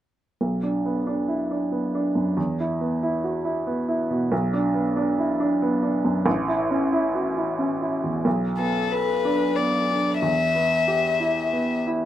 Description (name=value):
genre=neoclassical piano and strings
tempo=92 BPM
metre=3/4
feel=rubato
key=B minor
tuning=A4 = 437 Hz
part: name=clear upright piano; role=accompaniment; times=0.4-12.1 s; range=A1 to A4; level=-22 LUFS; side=right 1 dB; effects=plate reverb
part: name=warm violin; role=melody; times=8.6-11.8 s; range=A4 to E5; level=-22 LUFS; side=left 4 dB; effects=none
room=wet small room reverb, RT60 0.5 s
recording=rough home demo mix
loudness=-21 LUFS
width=side -12 dB against mid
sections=0.4-8.3 A section; 8.3-12.1 B section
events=none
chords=0.4 Bm; 2.4 E5; 4.3 Bm; 6.3 A; 8.3 Bm7; 10.2 Em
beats=| 0.41 1.07 1.72 | 2.37 3.02 3.67 | 4.32 4.96 5.61 | 6.26 6.92 7.58 | 8.26 8.92 9.57 | 10.22 10.88 11.53